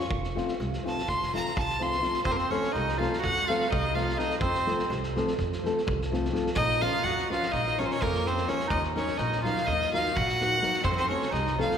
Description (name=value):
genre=balkan folk, Balkan wedding band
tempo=252 BPM (eighths)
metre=9/8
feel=straight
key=F phrygian dominant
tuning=A4 = 440 Hz
part: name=clear violin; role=melody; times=0.0-11.8 s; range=Bb4 to C6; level=-28 LUFS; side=equal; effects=none
part: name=nylon-string guitar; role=accompaniment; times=0.0-11.7 s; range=F3 to Bb4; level=-31 LUFS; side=left 2 dB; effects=none
part: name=upright bass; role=bass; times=0.0-11.6 s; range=F1 to F2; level=-33 LUFS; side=right 1 dB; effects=none
part: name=loose indie drum kit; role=percussion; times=0.0-11.8 s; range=kick drum, snare drum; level=-36 LUFS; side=equal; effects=none
part: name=bright clarinet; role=second line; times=2.3-11.8 s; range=Bb3 to Gb4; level=-33 LUFS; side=right 2 dB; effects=none
room=wet church reverb, RT60 3.0 s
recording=recorded in a church or concert hall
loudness=-25 LUFS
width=side -8 dB against mid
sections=0.0-2.3 A section; 2.3-11.8 B section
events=violin solo 0.0-2.3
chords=0.1 F; 6.6 Bbm; 8.7 Ebm; 10.8 F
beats=| 0.10 0.34 0.58 0.82 1.06 1.30 1.54 1.78 2.02 | 2.26 2.50 2.73 2.97 3.21 3.45 3.69 3.93 4.17 | 4.41 4.65 4.88 5.12 5.36 5.60 5.84 6.08 6.32 | 6.55 6.79 7.03 7.27 7.51 7.75 7.99 8.22 8.46 | 8.70 8.94 9.18 9.41 9.65 9.89 10.13 10.37 10.60 | 10.84 11.08 11.32 11.55